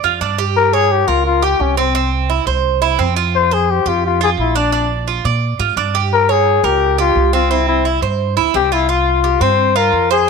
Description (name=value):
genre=latin, Cuban son and guajira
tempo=173 BPM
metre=4/4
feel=straight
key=unclear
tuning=A4 = 440 Hz
part: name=Cuban tres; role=arpeggios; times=0.0-10.3 s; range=C4 to D5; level=-17 LUFS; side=right 14 dB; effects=none
part: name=upright bass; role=bass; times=0.0-10.3 s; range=Bb1 to Bb2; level=-19 LUFS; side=right 1 dB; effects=none
part: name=trumpet with bucket mute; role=melody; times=0.6-10.3 s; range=C4 to C5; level=-15 LUFS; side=left 10 dB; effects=none
room=light reverb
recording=1960s-style stereo with parts hard left and right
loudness=-13 LUFS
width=side -5 dB against mid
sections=0.0-8.9 A section; 8.9-10.3 B section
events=none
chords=0.0 Bb (rootless); 0.6 Gdim; 1.9 C; 3.3 Fsus2; 4.7 Bb; 6.1 Gdim; 7.5 C; 8.9 C7sus4